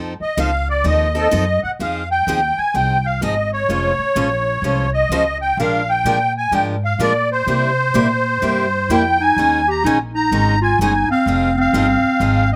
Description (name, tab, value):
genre	acoustic string swing (jazz manouche)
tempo	127 BPM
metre	4/4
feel	swing 64% on 8ths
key	F minor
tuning	A4 = 439 Hz
part	picked steel-string acoustic guitar	accompaniment	0.0-12.4 s	C3 to C5	-25 LUFS	equal	none
part	upright bass	bass	0.0-12.6 s	F1 to C3	-24 LUFS	equal	none
part	musette accordion	melody	0.2-12.6 s	A4 to Bb5	-20 LUFS	equal	slapback echo
part	warm clarinet	second line	8.9-12.6 s	C4 to G4	-21 LUFS	equal	none
room	little or no reverb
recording	recorded outdoors, with no room sound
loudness	-17 LUFS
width	mono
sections	0.0-1.8 A section; 1.8-12.6 B section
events	accordion solo 0.0-1.8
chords	0.0 F7; 1.8 Fm7; 3.7 Dbmaj7/F; 5.6 Bb7; 7.5 C7; 9.4 Eb7sus4; 11.3 Fm7